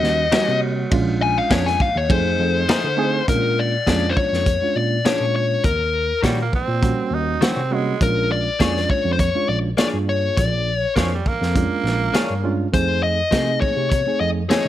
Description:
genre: straight-eighth soul blues.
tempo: 102 BPM.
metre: 4/4.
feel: straight.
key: unclear.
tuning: A4 = 440 Hz.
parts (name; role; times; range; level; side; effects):
dark smooth lead guitar; melody; 0.0-14.7 s; Bb4 to Ab5; -21 LUFS; left 4 dB; overdrive.
reed electric piano; accompaniment; 0.0-14.7 s; G3 to Eb5; -25 LUFS; right 5 dB; overdrive.
tine electric piano; bass; 0.0-14.7 s; Bb1 to D3; -23 LUFS; equal; ensemble chorus.
crunchy breakbeat drum kit; drums; 0.0-14.7 s; hi-hat, kick drum, ride cymbal, snare drum; -22 LUFS; equal; none.
direct-recorded clean electric guitar; stabs; 0.3-14.7 s; Bb2 to C#5; -26 LUFS; left 4 dB; analog chorus.
growling tenor saxophone; second line; 6.3-12.6 s; F3 to Eb4; -25 LUFS; right 5 dB; none.
room: small room ambience.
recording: none.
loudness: -17 LUFS.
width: side -12 dB against mid.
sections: 0.0-3.3 A section; 3.3-14.7 B section.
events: lead electric guitar solo 0.0-3.3.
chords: 0.0 Eb7#9; 0.9 Bb7#9; 2.1 F7#9; 3.3 Bb7#9; 5.6 Eb7#9; 8.0 Bb7#9; 12.7 F7#9.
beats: 0.33 | 0.92 1.51 2.10 2.69 | 3.28 3.87 4.46 5.06 | 5.65 6.24 6.83 7.42 | 8.01 8.60 9.19 9.78 | 10.37 10.96 11.55 12.14 | 12.73 13.32 13.91 14.50.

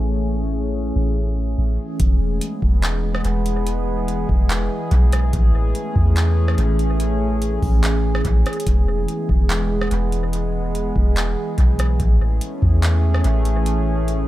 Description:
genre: hip hop, atmospheric cloud-rap.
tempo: 144 BPM.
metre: 4/4.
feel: half-time.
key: E major.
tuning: A4 = 440 Hz.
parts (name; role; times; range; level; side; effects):
warbly tape-like pad; sustained chords; 0.0-14.3 s; E3 to G#4; -24 LUFS; equal; chorus, built-in reverb, sidechain pumping.
soft 808-style bass; bass; 0.0-14.2 s; E1 to E2; -19 LUFS; equal; none.
booming analog drum machine; drums; 2.0-14.2 s; handclaps, hi-hat, kick drum, rim click; -20 LUFS; equal; none.
room: little or no reverb.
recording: echo-heavy mix, low-pass filter.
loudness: -17 LUFS.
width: side -15 dB against mid.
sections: 0.0-2.0 A section; 2.0-14.3 B section.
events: filter sweep 0.0-2.0.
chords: 0.0 Amaj7; 2.0 E; 5.3 Amaj7; 8.7 E; 12.0 Amaj7.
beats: | 0.33 0.75 1.16 1.58 | 2.00 2.41 2.83 3.25 | 3.66 4.08 4.50 4.91 | 5.33 5.75 6.16 6.58 | 7.00 7.41 7.83 8.25 | 8.66 9.08 9.50 9.91 | 10.33 10.75 11.16 11.58 | 12.00 12.41 12.83 13.25 | 13.66 14.08.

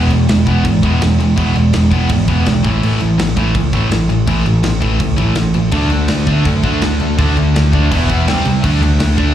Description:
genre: punk rock.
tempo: 166 BPM.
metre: 4/4.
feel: straight.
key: E mixolydian.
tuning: A4 = 440 Hz.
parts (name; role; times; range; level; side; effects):
sludgy distorted guitar; riff; 0.0-9.3 s; A2 to E4; -17 LUFS; right 7 dB; overdrive.
tight distorted guitar; riff; 0.0-9.3 s; A2 to E4; -19 LUFS; left 9 dB; distortion, slapback echo.
overdriven picked electric bass; bass; 0.0-9.3 s; E1 to F#2; -15 LUFS; left 1 dB; none.
tight metal drum kit; drums; 0.1-9.3 s; crash cymbal, kick drum, snare drum; -20 LUFS; left 1 dB; none.
high-gain distorted guitar; riff; 5.7-9.3 s; E2 to D4; -21 LUFS; equal; distortion, slapback echo.
room: studio reverb.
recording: live gig heard through the venue's PA, club reverb.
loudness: -11 LUFS.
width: side -11 dB against mid.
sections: 0.0-9.3 A section.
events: none.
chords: 0.0 E; 2.6 A5; 5.7 D5; 7.9 E5; 8.3 C5; 8.6 D5.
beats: 0.29 0.66 1.02 | 1.38 1.74 2.11 2.47 | 2.83 3.19 3.56 3.92 | 4.28 4.64 5.01 5.37 | 5.73 6.09 6.46 6.82 | 7.18 7.54 7.91 8.27 | 8.63 9.00.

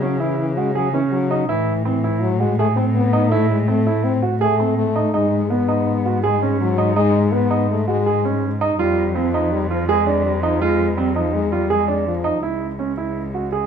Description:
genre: contemporary instrumental, chamber music in an uneven meter.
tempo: 164 BPM.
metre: 5/4.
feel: straight.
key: unclear.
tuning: A4 = 436 Hz.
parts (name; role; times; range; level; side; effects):
warm French horn; second line; 0.0-12.4 s; E3 to C4; -21 LUFS; left 7 dB; none.
warm grand piano; arpeggios; 0.0-13.6 s; B3 to G#4; -20 LUFS; right 6 dB; none.
dark cello; bass; 0.0-13.7 s; C#2 to C#3; -22 LUFS; left 1 dB; none.
room: light reverb.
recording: close, detailed microphones.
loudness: -17 LUFS.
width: side -7 dB against mid.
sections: 0.0-12.4 A section; 12.4-13.7 B section.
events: none.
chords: 0.0 C#m; 1.5 Am; 5.1 G#m; 8.8 Fm; 12.4 C#m.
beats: 0.02 0.39 0.75 1.12 | 1.48 1.85 2.21 2.58 2.95 | 3.31 3.68 4.04 4.41 4.78 | 5.14 5.51 5.87 6.24 6.60 | 6.97 7.33 7.70 8.06 8.43 | 8.79 9.15 9.52 9.88 10.25 | 10.61 10.97 11.34 11.70 12.07 | 12.43 12.80 13.16 13.53.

